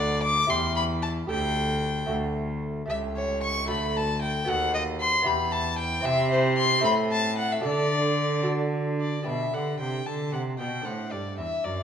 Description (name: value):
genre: classical, baroque-style sonata movement with continuo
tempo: 76 BPM (dotted quarters)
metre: 6/8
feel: straight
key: G major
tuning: A4 = 439 Hz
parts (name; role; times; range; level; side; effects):
- warm violin; melody; 0.0-11.8 s; C5 to D6; -26 LUFS; left 3 dB; none
- lute; accompaniment; 0.0-11.8 s; D2 to C5; -31 LUFS; right 2 dB; none
- rich cello; bass; 0.0-11.8 s; C#2 to D3; -28 LUFS; right 1 dB; none
room: wet recital hall reverb, RT60 1.6 s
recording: minimal, uncompressed stereo recording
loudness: -24 LUFS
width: side -8 dB against mid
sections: 0.0-9.3 A section; 9.3-11.8 B section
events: none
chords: 0.5 Em; 1.3 Dsus4; 2.1 D; 2.9 A7/C#; 3.7 D; 4.5 B7/D#; 5.3 Em; 6.0 C; 6.8 Am; 7.6 D5; 8.5 D; 9.3 G/B; 10.9 D7